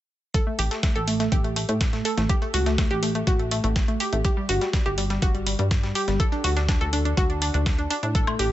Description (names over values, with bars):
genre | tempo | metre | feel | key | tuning
progressive house | 123 BPM | 4/4 | straight | unclear | A4 = 441 Hz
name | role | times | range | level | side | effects
analog pluck | arpeggios | 0.3-8.5 s | G3 to A4 | -26 LUFS | equal | chorus, sidechain pumping, tape echo
dusty soul sampler-style drum kit | drums | 0.3-8.5 s | hi-hat, snare drum | -33 LUFS | left 1 dB | sidechain pumping on hats, high-pass filter on hats, high-pass filter on snare
electronic hi-hat and woodblock | drums | 0.3-8.5 s | none | -31 LUFS | right 1 dB | overdrive, sidechain pumping on hats, sidechain pumping on perc
electronic kick drum | drums | 0.3-8.2 s | none | -23 LUFS | equal | overdrive
plucky analog bass | bass | 0.6-8.5 s | G1 to A2 | -26 LUFS | equal | sidechain pumping
room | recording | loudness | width
little or no reverb | nothing above 8.0 kHz | -21 LUFS | side -14 dB against mid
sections
0.3-8.5 A section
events
none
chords
0.3 N.C.; 6.2 D5